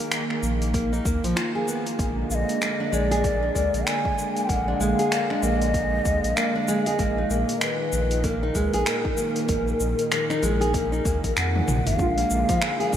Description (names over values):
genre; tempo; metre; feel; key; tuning
organic downtempo; 96 BPM; 4/4; swing 60% on 16ths; unclear; A4 = 437 Hz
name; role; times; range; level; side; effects
warm analog pad; sustained chords; 0.0-13.0 s; A#2 to Bb3; -29 LUFS; right 1 dB; chorus, tremolo, sidechain pumping
nylon-string guitar; arpeggios; 0.0-13.0 s; F3 to Ab4; -28 LUFS; equal; diffuse ambient delay
deep house drum kit; drums; 0.1-13.0 s; finger snaps, hi-hat, shaker, toms; -30 LUFS; equal; overdrive
warm sub bass; bass; 0.4-13.0 s; Ab1 to F2; -27 LUFS; equal; sidechain pumping
electronic kick drum; drums; 0.7-13.0 s; none; -28 LUFS; equal; overdrive
breathy mellow ney; melody; 2.3-13.0 s; A#4 to Ab5; -26 LUFS; left 1 dB; diffuse ambient delay
deep mellow chord stab; accompaniment; 12.0-13.0 s; Ab3 to F4; -29 LUFS; right 3 dB; chorus, sidechain pumping
room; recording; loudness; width
wet cathedral reverb, RT60 6.4 s; dreamy mix soaked in reverb; -21 LUFS; side -10 dB against mid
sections
0.0-12.0 A section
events
drum fill 11.5-12.0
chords
0.0 Bmaj7/A# (rootless); 2.0 Bb7; 7.0 Bmaj7/A# (rootless); 12.0 Bb7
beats
0.12 0.74 1.37 | 1.99 2.62 3.24 3.87 | 4.49 5.12 5.74 6.37 | 6.99 7.62 8.24 8.87 | 9.49 10.12 10.74 11.37 | 11.99 12.62